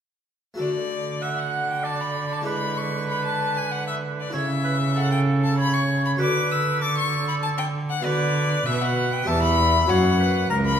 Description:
classical, baroque-style sonata movement with continuo; 97 BPM; 3/4; straight; D major; A4 = 440 Hz
harpsichord; accompaniment; 0.5-10.8 s; C#2 to E5; -29 LUFS; left 3 dB
clear violin; melody; 0.6-10.8 s; D5 to E6; -26 LUFS; left 5 dB
rich cello; bass; 0.6-10.8 s; C#2 to D3; -24 LUFS; right 1 dB
clear oboe; second line; 1.2-10.8 s; A4 to F#5; -27 LUFS; right 6 dB
wet recital hall reverb, RT60 1.6 s; heard from further back in the room; -20 LUFS; side -8 dB against mid
0.6-10.8 A section
0.6 D; 2.5 E7/D; 4.3 A/C#; 6.2 D; 8.0 Bm/D; 9.3 Em; 9.9 F#
| 0.59 1.22 1.84 | 2.46 3.08 3.71 | 4.33 4.96 5.58 | 6.20 6.82 7.43 | 8.05 8.66 9.28 | 9.89 10.50

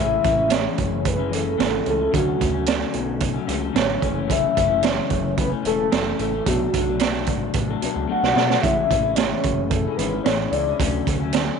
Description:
indie pop, bedroom pop; 111 BPM; 4/4; straight; A4 = 440 Hz
soft octave-layered synth lead; melody; 0.0-11.1 s; F#4 to F#5; -23 LUFS; left 2 dB; tremolo, wide subtle chorus, slapback echo
electric guitar through a small old amp; accompaniment; 0.0-11.6 s; F#2 to E4; -26 LUFS; left 11 dB; wide subtle chorus, vibrato effect
fat analog bass; bass; 0.0-11.5 s; E1 to B2; -28 LUFS; equal; tube saturation
raw garage drum kit; drums; 0.2-11.5 s; hi-hat, kick drum, snare drum; -23 LUFS; right 6 dB
moderate plate reverb, RT60 2.0 s, studio ambience; 1960s-style stereo with parts hard left and right, nothing above 10.9 kHz; -19 LUFS; side -6 dB against mid
0.0-11.6 A section
drum fill 8.1-8.6
0.0 Amaj7; 2.1 Dmaj7; 4.0 F#m7; 6.5 Bm7; 8.6 Amaj7; 10.8 Dmaj7
0.52 1.06 1.60 | 2.14 2.68 3.22 3.76 | 4.30 4.84 5.39 5.93 | 6.47 7.01 7.55 8.09 | 8.63 9.18 9.72 10.26 | 10.80 11.34

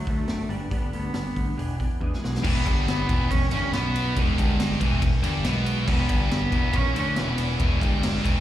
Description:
quiet-loud alternative rock; 140 BPM; 4/4; straight; A4 = 439 Hz
rich cello; melody; 0.0-8.4 s; F#3 to C#4; -29 LUFS; right 1 dB; slapback echo, digital delay
semi-hollow electric guitar; arpeggios; 0.0-2.4 s; G2 to G#4; -35 LUFS; right 2 dB; ensemble chorus, slapback echo
growling picked electric bass; bass; 0.1-8.4 s; E1 to E2; -27 LUFS; equal; overdrive
raw garage drum kit; drums; 0.1-8.3 s; crash cymbal, hi-hat, kick drum, ride cymbal, snare drum; -26 LUFS; equal
distorted electric guitar; riff; 2.4-8.4 s; E2 to D4; -30 LUFS; left 11 dB; overdrive, slapback echo
scooped high-gain guitar; riff; 2.4-8.4 s; E2 to D4; -31 LUFS; right 12 dB; distortion, slapback echo
studio reverb; live gig heard through the venue's PA, recital hall reverb; -22 LUFS; side -12 dB against mid
0.0-2.4 A section; 2.4-8.4 B section
drum fill 2.0-2.4
0.0 D; 0.5 G; 1.6 E7; 2.4 E
0.28 | 0.72 1.15 1.58 2.01 | 2.44 2.87 3.30 3.73 | 4.16 4.59 5.01 5.44 | 5.87 6.30 6.73 7.16 | 7.59 8.02

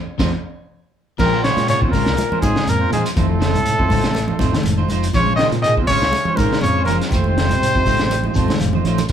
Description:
afrobeat; 121 BPM; 4/4; swing 54% on 16ths; Bb minor; A4 = 440 Hz
reed electric piano; accompaniment; 0.2-9.1 s; Db3 to A5; -28 LUFS; left 2 dB
electric guitar at the edge of break-up; arpeggios; 0.2-9.1 s; C3 to F3; -26 LUFS; left 6 dB
electric guitar at the edge of break-up; stabs; 0.2-9.0 s; Ab3 to C5; -26 LUFS; right 5 dB
fingered electric bass; bass; 0.2-9.1 s; F1 to Bb2; -22 LUFS; equal
crunchy breakbeat drum kit; drums; 0.2-9.1 s; crash cymbal, hi-hat, kick drum, snare drum; -22 LUFS; equal
congas; percussion; 0.2-9.1 s; -25 LUFS; right 2 dB
shekere; percussion; 0.2-9.1 s; -27 LUFS; equal
clear trumpet; melody; 1.2-8.8 s; Ab4 to Eb5; -20 LUFS; equal
brilliant bass trombone; second line; 1.2-9.1 s; Ab2 to Eb3; -30 LUFS; left 4 dB
warm alto saxophone; second line; 1.2-8.8 s; Ab3 to Ab4; -32 LUFS; right 3 dB
moderate large studio reverb, RT60 0.8 s; band playing live in one room; -15 LUFS; side -9 dB against mid
0.0-1.2 A section; 1.2-9.1 B section
band accent 0.0-1.2; drum fill 0.2-1.2, 8.4-9.1; reed electric piano fill 0.2-1.2, 8.1-9.1
0.0 F7(no3); 1.2 Bbm9; 3.2 F7; 5.1 Bbm9; 7.1 F7
0.20 0.69 | 1.19 1.68 2.18 2.67 | 3.17 3.66 4.16 4.65 | 5.15 5.64 6.14 6.63 | 7.13 7.62 8.12 8.61 | 9.11

